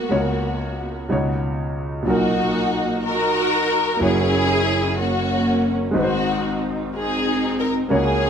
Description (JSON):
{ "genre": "gospel", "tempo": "62 BPM (dotted quarters)", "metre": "6/8", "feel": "straight", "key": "F# major", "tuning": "A4 = 440 Hz", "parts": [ { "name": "warm studio string section", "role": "melody", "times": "0.0-8.3 s", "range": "A#3 to A#4", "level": "-20 LUFS", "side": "equal", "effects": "none" }, { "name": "clear grand piano", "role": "accompaniment", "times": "0.0-8.3 s", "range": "F#1 to C#5", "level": "-22 LUFS", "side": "equal", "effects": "none" } ], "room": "moderate large studio reverb, RT60 1.2 s", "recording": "band playing live in one room", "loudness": "-18 LUFS", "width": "side -7 dB against mid", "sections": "0.0-2.1 A section; 2.1-8.3 B section", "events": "none", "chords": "0.1 F#/C#; 1.1 C#9sus4; 2.1 Bmaj7; 4.0 F#7; 6.0 G#7", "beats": "| 0.11 1.08 | 2.06 3.03 | 4.01 4.98 | 5.95 6.93 | 7.90" }